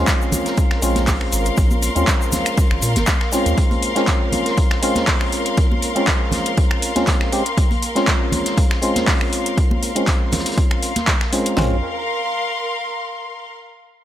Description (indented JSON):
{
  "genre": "deep house",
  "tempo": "120 BPM",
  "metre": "4/4",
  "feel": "swing 54% on 16ths",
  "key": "Bb minor",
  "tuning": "A4 = 441 Hz",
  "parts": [
    { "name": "percussive organ stab", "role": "stabs", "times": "0.0-11.8 s", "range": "Ab3 to G4", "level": "-22 LUFS", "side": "equal", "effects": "wide subtle chorus, vintage 12-bit sampler grit, sidechain pumping, tape echo" },
    { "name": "round analog bass", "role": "bass", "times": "0.0-3.5, 11.6-11.8 s", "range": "Ab1 to Bb2", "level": "-21 LUFS", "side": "equal", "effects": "sidechain pumping" },
    { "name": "rich symphonic string section", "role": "texture", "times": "0.0-13.5 s", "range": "Bb4 to C6", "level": "-25 LUFS", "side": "left 2 dB", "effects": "sidechain pumping" },
    { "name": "deep house drum kit", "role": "drums", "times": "0.1-11.7 s", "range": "kick drum, snare drum, toms", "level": "-18 LUFS", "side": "equal", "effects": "overdrive" },
    { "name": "deep house drum kit", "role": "drums", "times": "0.1-11.6 s", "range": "finger snaps, handclaps, hi-hat", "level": "-23 LUFS", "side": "equal", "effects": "overdrive" },
    { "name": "loose indie drum kit", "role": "drums", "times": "0.1-11.5 s", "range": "hi-hat, snare drum", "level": "-32 LUFS", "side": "equal", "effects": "none" },
    { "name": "egg shaker", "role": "percussion", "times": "0.1-3.6 s", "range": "none", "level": "-29 LUFS", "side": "left 3 dB", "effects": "none" },
    { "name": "congas", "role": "percussion", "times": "0.3-11.1 s", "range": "none", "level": "-26 LUFS", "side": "right 2 dB", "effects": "none" }
  ],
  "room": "light reverb, small room reverb",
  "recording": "none",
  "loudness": "-16 LUFS",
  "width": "side -12 dB against mid",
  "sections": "0.0-11.6 A section; 11.6-13.6 B section",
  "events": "filter sweep on synth stab 0.0-11.6",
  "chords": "0.0 Bbm9",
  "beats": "0.08 0.58 1.08 | 1.58 2.08 2.58 3.08 | 3.58 4.08 4.58 5.08 | 5.58 6.08 6.58 7.08 | 7.58 8.08 8.58 9.08 | 9.58 10.08 10.58 11.08 | 11.58 12.08 12.58 13.08"
}